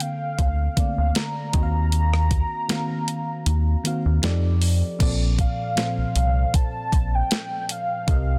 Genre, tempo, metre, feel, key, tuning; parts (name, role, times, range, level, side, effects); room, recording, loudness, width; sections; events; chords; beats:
contemporary R&B; 78 BPM; 4/4; swing 54% on 16ths; Bb major; A4 = 439 Hz
warm velvety synth lead; melody; 0.0-8.4 s; F5 to Bb5; -31 LUFS; equal; chorus, tape echo
FM electric piano; accompaniment; 0.0-8.4 s; Bb2 to F5; -31 LUFS; equal
clean 12-bit digital drum machine; drums; 0.0-8.3 s; crash cymbal, hi-hat, kick drum, rim click, snare drum; -26 LUFS; equal
rubbery square bass; bass; 0.4-8.4 s; Bb1 to F2; -23 LUFS; equal
little or no reverb; dense, heavily limited modern master; -23 LUFS; mono
0.0-5.0 A section; 5.0-8.4 B section
kick muted 3.5-5.0
0.0 Bbmaj7/D; 1.5 Ebm6; 4.2 F13; 5.0 Bbmaj7
0.39 1.16 | 1.92 2.69 3.46 4.23 | 5.00 5.77 6.54 7.31 | 8.08